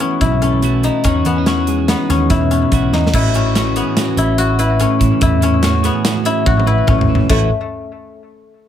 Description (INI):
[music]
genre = math rock and midwest emo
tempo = 144 BPM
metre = 5/4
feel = straight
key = A lydian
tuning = A4 = 437 Hz
[part]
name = twelve-string electric guitar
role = accompaniment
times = 0.0-7.5 s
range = F#2 to B4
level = -19 LUFS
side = right 9 dB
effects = none
[part]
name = guzheng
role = arpeggios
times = 0.0-7.5 s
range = A3 to F#4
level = -17 LUFS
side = left 6 dB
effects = analog delay
[part]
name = modern studio drum kit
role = drums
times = 0.0-7.4 s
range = crash cymbal, hi-hat, kick drum, snare drum, toms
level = -19 LUFS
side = equal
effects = none
[part]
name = vintage muted picked electric bass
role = bass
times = 0.2-7.5 s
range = A1 to A2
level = -17 LUFS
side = equal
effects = none
[sound]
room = moderate small room reverb, RT60 0.5 s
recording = none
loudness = -12 LUFS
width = side -10 dB against mid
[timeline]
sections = 0.0-3.1 A section; 3.1-7.3 B section; 7.3-8.7 C section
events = drum fill 2.9, 6.5-7.3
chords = 0.0 B7sus4; 1.1 Emaj9; 3.1 A69